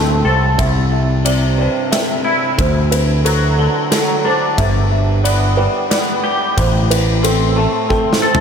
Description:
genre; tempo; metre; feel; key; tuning
post-rock; 90 BPM; 3/4; straight; C lydian; A4 = 440 Hz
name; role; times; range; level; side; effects
felt-muted upright piano; arpeggios; 0.0-8.4 s; A4 to E5; -20 LUFS; right 3 dB; ping-pong delay
twangy electric guitar; arpeggios; 0.0-8.4 s; C2 to A4; -18 LUFS; left 1 dB; analog chorus, ping-pong delay
growling picked electric bass; bass; 0.0-7.7 s; G1 to D2; -15 LUFS; equal; overdrive
big rock drum kit; drums; 0.6-8.4 s; kick drum, ride cymbal, snare drum, toms; -20 LUFS; left 1 dB; none
room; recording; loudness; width
moderate cathedral reverb, RT60 5.1 s; dreamy mix soaked in reverb; -13 LUFS; side -7 dB against mid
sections
0.0-8.4 A section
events
drum fill 7.9-8.4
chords
0.0 Am; 0.6 C; 2.6 D; 4.6 G; 6.6 Am

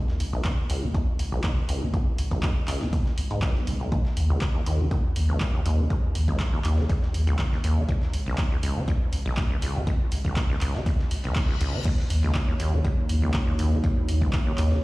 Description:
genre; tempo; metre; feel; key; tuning
acid house; 121 BPM; 4/4; straight; unclear; A4 = 440 Hz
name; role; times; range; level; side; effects
dusty soul sampler-style drum kit; drums; 0.1-14.8 s; hi-hat, snare drum; -44 LUFS; equal; high-pass filter on hats, high-pass filter on snare, high-pass filter on room
warm sub bass; bass; 0.2-14.8 s; Db2 to Eb2; -25 LUFS; equal; sidechain pumping
punchy analog drum machine; drums; 0.2-14.7 s; crash cymbal, handclaps, hi-hat; -36 LUFS; right 1 dB; none
acid bass, saw; riff; 0.3-14.8 s; Cb2 to Eb3; -29 LUFS; equal; analog chorus, tape echo
electronic kick drum; drums; 0.4-14.4 s; none; -25 LUFS; equal; none
reverse cymbal; sound effects; 11.1-11.9 s; none; -40 LUFS; left 5 dB; none
dark analog pad; sustained chords; 11.9-14.8 s; Bb3 to Db5; -32 LUFS; right 1 dB; lush chorus, sidechain pumping
room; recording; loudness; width
light reverb, digital ambience; played on a big sound system in a bare room, large studio reverb; -22 LUFS; side -20 dB against mid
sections
0.0-14.8 A section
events
filter sweep on acid bass 0.0-14.8; reverse cymbal 11.1-11.9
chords
0.0 Db5; 3.9 N.C.; 11.9 Ebm7

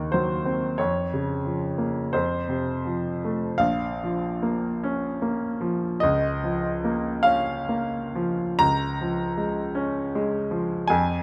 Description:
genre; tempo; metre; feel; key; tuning
classical, romantic nocturne for solo piano; 38-55 BPM; 4/4; rubato; Bb minor; A4 = 440 Hz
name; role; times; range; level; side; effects
clear baby grand piano; solo; 0.0-11.2 s; Bb1 to Bb5; -26 LUFS; equal; none
room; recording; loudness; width
moderate scoring stage reverb, RT60 1.7 s; close, detailed microphones; -26 LUFS; mono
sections
0.0-3.6 A section; 3.6-11.2 B section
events
none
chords
0.0 Cdim/Eb; 0.8 Bbm/F; 2.1 F; 3.6 Bbm; 6.0 Bbm/Db; 8.6 Db

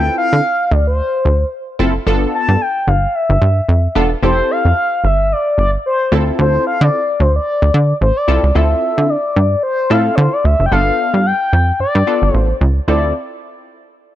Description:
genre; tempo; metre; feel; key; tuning
early-eighties boogie funk; 111 BPM; 4/4; swing 56% on 16ths; D dorian; A4 = 440 Hz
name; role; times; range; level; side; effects
expressive synth lead; melody; 0.0-13.1 s; B4 to A5; -16 LUFS; left 2 dB; chorus
funky polysynth comp; accompaniment; 0.0-13.1 s; B3 to A4; -20 LUFS; equal; chorus
plucky analog bass; bass; 0.0-13.1 s; E1 to D3; -13 LUFS; right 1 dB; none
room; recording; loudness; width
light reverb; none; -12 LUFS; side -13 dB against mid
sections
0.0-8.6 A section; 8.6-12.9 B section; 12.9-14.2 C section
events
none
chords
0.0 Dm7; 2.1 G7; 4.2 Fmaj9; 6.1 Dm7; 10.7 G7; 12.9 Dm7

